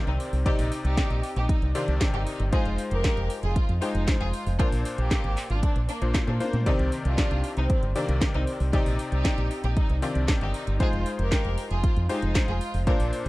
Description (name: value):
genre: italo disco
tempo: 116 BPM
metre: 4/4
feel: straight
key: C minor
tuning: A4 = 439 Hz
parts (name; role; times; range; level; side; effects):
- rich chamber violin section; melody; 0.0-13.3 s; Bb3 to Bb4; -33 LUFS; right 1 dB; tape echo
- bright electric grand piano; stabs; 0.0-13.3 s; Bb2 to D5; -31 LUFS; left 3 dB; none
- fingered electric bass with an envelope filter; bass; 0.1-13.3 s; F1 to Bb2; -26 LUFS; equal; none
- house drum kit; drums; 0.1-13.3 s; handclaps, hi-hat, snare drum, toms; -33 LUFS; equal; studio reverb
- electronic kick drum; drums; 0.5-13.0 s; none; -25 LUFS; equal; studio reverb
room: little or no reverb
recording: dry, close 1970s-style studio recording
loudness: -23 LUFS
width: side -19 dB against mid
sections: 0.0-13.3 A section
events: drum fill 6.1-6.7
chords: 0.0 Cmadd9; 2.5 Fm7; 4.6 Bbadd9; 6.7 Cmadd9; 10.8 Fm7